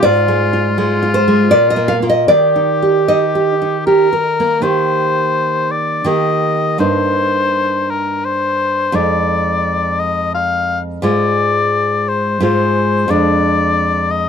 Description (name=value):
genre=romantic duo for oboe and classical guitar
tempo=74-91 BPM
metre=3/4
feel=rubato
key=Eb major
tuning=A4 = 440 Hz
part: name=clear oboe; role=melody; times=0.0-14.3 s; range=F4 to F5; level=-16 LUFS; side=left 4 dB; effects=none
part: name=nylon-string guitar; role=accompaniment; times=0.0-14.3 s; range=F2 to F5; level=-14 LUFS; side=right 1 dB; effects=none
room=little or no reverb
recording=dry, close 1970s-style studio recording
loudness=-12 LUFS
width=side -7 dB against mid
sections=0.0-4.6 A section; 4.6-14.3 B section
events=none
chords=0.0 Fm/Ab; 1.5 Bb5; 2.3 Eb; 6.8 Eb/G; 8.9 Fm7; 11.0 Fm/Ab; 13.1 Ddim/F